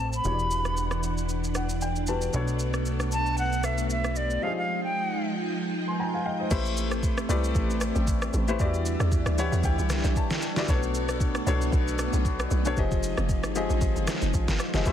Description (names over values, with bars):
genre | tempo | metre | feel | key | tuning
amapiano | 115 BPM | 4/4 | swing 55% on 16ths | unclear | A4 = 444 Hz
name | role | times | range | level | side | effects
bright silver concert flute | melody | 0.0-5.3 s | D5 to B5 | -30 LUFS | equal | low-pass filter, ping-pong delay
warm baby grand piano | accompaniment | 0.0-14.9 s | B2 to C6 | -31 LUFS | left 4 dB | low-pass filter
string machine, violins | sustained chords | 0.0-14.9 s | E3 to G5 | -32 LUFS | right 2 dB | ensemble chorus, sidechain pumping, low-pass filter
plucky analog bass | bass | 0.0-4.4 s | E1 to B1 | -29 LUFS | equal | none
smooth R&B drum kit | drums | 0.1-14.9 s | crash cymbal, kick drum, rim click, shaker, snare drum | -29 LUFS | equal | soft clipping on snare
hollow log drum bass | bass | 6.5-14.9 s | F1 to E2 | -27 LUFS | equal | none
room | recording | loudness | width
digital ambience | dense, heavily limited modern master | -24 LUFS | side -10 dB against mid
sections
0.0-6.5 A section; 6.5-14.9 B section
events
grand piano fill 1.3-2.3, 5.7-6.5, 9.1-10.7; drop 6.5-14.9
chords
0.2 Em9; 2.3 Bm9; 4.4 Fm9; 6.5 Am9; 8.6 Em9; 10.7 Bm9; 12.8 Fm9